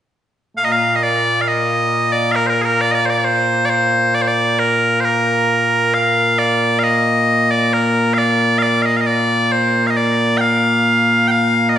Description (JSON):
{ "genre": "scottish traditional, Scottish pipe music", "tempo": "67 BPM", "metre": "3/4", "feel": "straight", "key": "Bb major", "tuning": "A4 = 440 Hz", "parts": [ { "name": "loud bright bagpipes", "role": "solo", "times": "0.6-11.8 s", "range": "Bb2 to G5", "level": "-13 LUFS", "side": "equal", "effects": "none" } ], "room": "wet recital hall reverb, RT60 1.6 s", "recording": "recorded in a church or concert hall, nothing above 10.5 kHz", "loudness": "-13 LUFS", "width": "side -10 dB against mid", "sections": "0.6-11.8 A section", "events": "none", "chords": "none" }